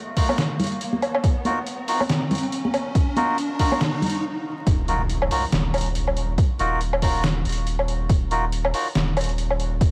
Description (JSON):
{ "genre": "deep dubstep", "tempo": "140 BPM", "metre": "4/4", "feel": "swing 57% on 16ths, half-time", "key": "Eb minor", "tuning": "A4 = 440 Hz", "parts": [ { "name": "riser and impact", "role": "sound effects", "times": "0.0-6.4 s", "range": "none", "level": "-32 LUFS", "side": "equal", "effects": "none" }, { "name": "melodica", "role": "stabs", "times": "0.2-8.9 s", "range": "Eb4 to Bb4", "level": "-30 LUFS", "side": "equal", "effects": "dub echo" }, { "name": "electronic kick drum", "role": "drums", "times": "0.2-9.9 s", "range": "none", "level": "-22 LUFS", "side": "equal", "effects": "small room reverb" }, { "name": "trip hop sampler-style drum kit", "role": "drums", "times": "0.2-9.9 s", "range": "hi-hat, snare drum, woodblock", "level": "-28 LUFS", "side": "equal", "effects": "small room reverb" }, { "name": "congas", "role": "percussion", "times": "0.3-4.1 s", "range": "none", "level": "-31 LUFS", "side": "equal", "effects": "dub echo" }, { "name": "saturated sub bass", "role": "bass", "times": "4.7-9.9 s", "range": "Eb1", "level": "-27 LUFS", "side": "equal", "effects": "none" } ], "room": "light reverb, digital ambience", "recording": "vinyl crackle", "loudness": "-23 LUFS", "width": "mono", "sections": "0.0-4.7 A section; 4.7-9.9 B section", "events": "build-up 0.0-4.7; riser 0.0-4.2; break 4.2-4.7; drop 4.7-9.9; impact 4.7-6.4", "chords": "0.0 Ebmadd9" }